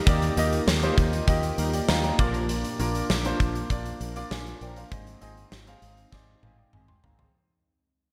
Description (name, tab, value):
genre	1980s-style pop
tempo	99 BPM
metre	4/4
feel	straight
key	unclear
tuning	A4 = 441 Hz
part	clear grand piano	accompaniment	0.0-7.5 s	Ab2 to C6	-33 LUFS	equal	none
part	glassy FM pad	sustained chords	0.0-7.3 s	Ab3 to G4	-37 LUFS	equal	ensemble chorus, built-in reverb
part	direct-recorded clean electric guitar	riff	0.0-3.1 s	F3 to G4	-38 LUFS	equal	none
part	mellow synth brass	stabs	0.0-7.3 s	Eb3 to Bb4	-42 LUFS	equal	none
part	fingered electric bass	bass	0.1-7.3 s	Ab1 to Eb2	-32 LUFS	equal	none
part	big rock drum kit	drums	0.1-7.3 s	hi-hat, kick drum, snare drum, toms	-28 LUFS	equal	gated reverb
room	light reverb, studio ambience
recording	none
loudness	-26 LUFS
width	mono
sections	0.0-7.3 A section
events	fade-out 0.0-7.3; grand piano fill 1.6-2.5; drum fill 6.1-7.3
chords	0.0 Eb; 2.2 Bb; 4.9 Ab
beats	| 0.07 0.67 1.28 1.89 | 2.49 3.10 3.70 4.31 | 4.92 5.52 6.13 6.74